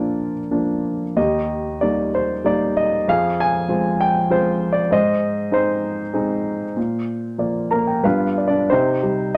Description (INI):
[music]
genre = classical, lyrical solo piano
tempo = 95 BPM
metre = 3/4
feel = uneven beats, rubato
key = Eb major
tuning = A4 = 436 Hz
[part]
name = warm baby grand piano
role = solo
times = 0.0-9.4 s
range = Eb2 to Bb5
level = -20 LUFS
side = equal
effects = none
[sound]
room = moderate studio reverb, RT60 0.7 s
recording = none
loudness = -20 LUFS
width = mono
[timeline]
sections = 0.0-8.7 A section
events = grand piano fill 7.4-8.7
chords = 0.0 Bb; 1.2 Eb; 3.1 Fm; 4.9 Ab; 6.8 Bb; 8.0 G7; 8.7 Cm